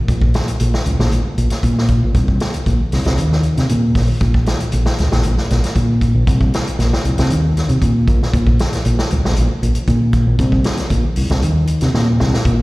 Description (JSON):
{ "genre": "afrobeat", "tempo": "116 BPM", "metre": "4/4", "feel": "straight", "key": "unclear", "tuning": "A4 = 441 Hz", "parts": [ { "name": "fingered electric bass", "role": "bass", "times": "0.1-12.6 s", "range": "Bb1 to C3", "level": "-15 LUFS", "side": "equal", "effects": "none" }, { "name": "vintage drum kit", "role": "drums", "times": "0.1-12.6 s", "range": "hi-hat, kick drum, snare drum", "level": "-18 LUFS", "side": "equal", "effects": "none" } ], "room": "little or no reverb", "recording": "live gig heard through the venue's PA, recital hall reverb", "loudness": "-13 LUFS", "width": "side -21 dB against mid", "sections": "0.0-12.5 A section", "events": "drum fill 11.9-12.5", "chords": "none" }